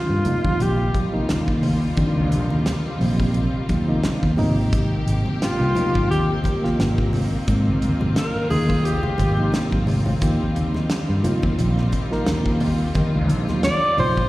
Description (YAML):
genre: electric jazz fusion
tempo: 87 BPM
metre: 4/4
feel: swing 55% on 16ths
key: unclear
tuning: A4 = 442 Hz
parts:
  - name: clear alto saxophone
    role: melody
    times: 0.0-1.0, 5.4-14.3 s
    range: F4 to D5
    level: -23 LUFS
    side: equal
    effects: slapback echo
  - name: rich studio string section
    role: sustained chords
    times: 0.0-14.3 s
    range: Eb3 to G4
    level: -28 LUFS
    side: left 1 dB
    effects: none
  - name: fingered electric bass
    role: bass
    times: 0.1-14.3 s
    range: Ab1 to Eb3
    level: -21 LUFS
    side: equal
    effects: none
  - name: reed electric piano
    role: accompaniment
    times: 0.2-14.3 s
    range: C3 to Bb4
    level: -26 LUFS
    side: right 1 dB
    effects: slapback echo
  - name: damped 70s drum kit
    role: drums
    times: 0.2-14.3 s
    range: hi-hat, kick drum, snare drum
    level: -26 LUFS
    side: equal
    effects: none
  - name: congas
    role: percussion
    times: 0.3-14.3 s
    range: none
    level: -28 LUFS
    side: equal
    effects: slapback echo
room: light reverb, small room ambience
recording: live gig heard through the venue's PA, recital hall reverb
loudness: -18 LUFS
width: side -17 dB against mid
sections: 0.0-14.3 A section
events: alto saxophone solo 0.0-14.3; drum fill 9.4-10.2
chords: 0.0 Eb69; 4.4 Abmaj9; 10.2 Eb69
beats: 0.60 1.29 | 1.98 2.66 3.35 4.04 | 4.72 5.41 6.10 6.79 | 7.47 8.16 8.84 9.53 | 10.21 10.90 11.59 12.27 | 12.96 13.64